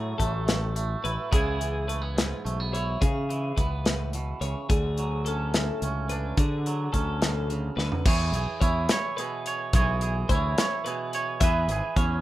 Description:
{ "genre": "math rock and midwest emo", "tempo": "71 BPM (dotted quarters)", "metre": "6/8", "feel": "straight", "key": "unclear", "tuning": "A4 = 440 Hz", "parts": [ { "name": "twangy electric guitar", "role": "accompaniment", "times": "0.0-12.2 s", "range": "G#2 to C#5", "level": "-30 LUFS", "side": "right 4 dB", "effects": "vibrato effect" }, { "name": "twelve-string electric guitar", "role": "arpeggios", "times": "0.0-12.2 s", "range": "G#4 to E5", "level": "-34 LUFS", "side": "left 4 dB", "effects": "wide subtle chorus, analog delay" }, { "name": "growling fingered electric bass", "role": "bass", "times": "0.0-12.2 s", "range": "G#1 to D3", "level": "-28 LUFS", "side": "equal", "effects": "overdrive" }, { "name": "modern studio drum kit", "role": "drums", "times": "0.2-12.1 s", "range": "crash cymbal, hi-hat, kick drum, snare drum, toms", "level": "-26 LUFS", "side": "equal", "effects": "none" } ], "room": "light reverb", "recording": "rough home demo mix", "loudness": "-24 LUFS", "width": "side -15 dB against mid", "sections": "0.0-8.1 A section; 8.1-12.2 B section", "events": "drum fill 7.8", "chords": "0.0 F#m7; 1.3 C#m7; 4.7 Dmaj7; 8.1 E6; 11.4 C#m7" }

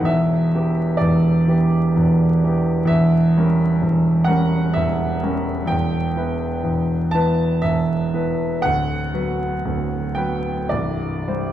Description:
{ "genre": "classical, romantic nocturne for solo piano", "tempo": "63 BPM", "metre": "3/4", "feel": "uneven beats, rubato", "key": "E minor", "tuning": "A4 = 440 Hz", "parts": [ { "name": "clear concert grand piano", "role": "solo", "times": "0.0-11.5 s", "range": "C1 to A5", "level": "-17 LUFS", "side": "right 1 dB", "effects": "none" } ], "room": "wet recital hall reverb, RT60 1.6 s", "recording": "vinyl crackle, nothing above 10.8 kHz", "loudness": "-17 LUFS", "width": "side -12 dB against mid", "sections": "0.0-11.5 A section", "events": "none", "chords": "0.1 Em; 2.9 Edim7; 5.7 Em; 8.6 Bm/D; 10.7 C" }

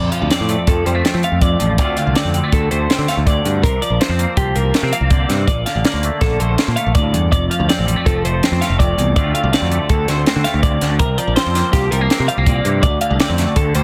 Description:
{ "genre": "math rock and midwest emo", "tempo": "163 BPM", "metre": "5/4", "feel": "straight", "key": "D minor", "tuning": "A4 = 440 Hz", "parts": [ { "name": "twangy electric guitar", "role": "accompaniment", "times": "0.0-13.8 s", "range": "D2 to F4", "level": "-24 LUFS", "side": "equal", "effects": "ensemble chorus" }, { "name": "twelve-string electric guitar", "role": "arpeggios", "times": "0.0-13.8 s", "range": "G4 to F5", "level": "-23 LUFS", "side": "equal", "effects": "spring reverb, digital delay" }, { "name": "modern bright picked electric bass", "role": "bass", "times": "0.0-13.8 s", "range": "F1 to F3", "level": "-21 LUFS", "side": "equal", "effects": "none" }, { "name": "compact cocktail drum kit", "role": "drums", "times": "0.1-13.8 s", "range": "hi-hat, kick drum, snare drum", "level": "-20 LUFS", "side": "equal", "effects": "none" } ], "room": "light reverb", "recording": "dense, heavily limited modern master", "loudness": "-16 LUFS", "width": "mono", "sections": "0.0-13.8 A section", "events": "none", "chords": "0.0 F6; 1.8 Dm7; 3.6 C7sus4; 5.5 Bbmaj7; 7.3 F6; 9.2 Dm7; 11.0 C7sus4; 12.8 Dm7" }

